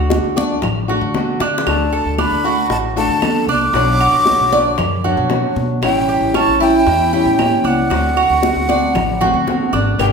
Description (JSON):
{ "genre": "latin, Cuban son and guajira", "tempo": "115 BPM", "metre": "4/4", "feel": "straight", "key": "unclear", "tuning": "A4 = 440 Hz", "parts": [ { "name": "flamenco guitar", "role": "accompaniment", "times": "0.0-10.1 s", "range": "B2 to G4", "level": "-19 LUFS", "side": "left 2 dB", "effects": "none" }, { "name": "Cuban tres", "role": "arpeggios", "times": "0.0-10.0 s", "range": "C#4 to D5", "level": "-20 LUFS", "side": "right 5 dB", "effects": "none" }, { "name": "upright bass", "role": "bass", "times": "0.0-10.1 s", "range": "G1 to D3", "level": "-22 LUFS", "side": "equal", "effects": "none" }, { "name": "bongos and cowbell", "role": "percussion", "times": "0.1-10.1 s", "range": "none", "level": "-24 LUFS", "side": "left 2 dB", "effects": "none" }, { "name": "congas", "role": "percussion", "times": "0.1-10.1 s", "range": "none", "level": "-24 LUFS", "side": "left 1 dB", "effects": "none" }, { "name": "claves", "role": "percussion", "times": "0.6-10.1 s", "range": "none", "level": "-28 LUFS", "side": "right 5 dB", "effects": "none" }, { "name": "breathy mellow silver concert flute", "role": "melody", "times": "1.7-10.1 s", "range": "F#5 to D6", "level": "-18 LUFS", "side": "equal", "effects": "none" } ], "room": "wet large studio reverb, RT60 1.4 s", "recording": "band playing live in one room", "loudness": "-13 LUFS", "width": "side -5 dB against mid", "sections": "0.0-10.0 A section", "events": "drum fill 1.4, 9.2-10.0", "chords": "0.0 D; 3.7 Bm; 5.8 A7; 7.9 D7", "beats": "0.11 0.63 1.15 | 1.67 2.19 2.71 3.23 | 3.75 4.27 4.79 5.31 | 5.83 6.35 6.87 7.39 | 7.91 8.43 8.95 9.47 | 9.99" }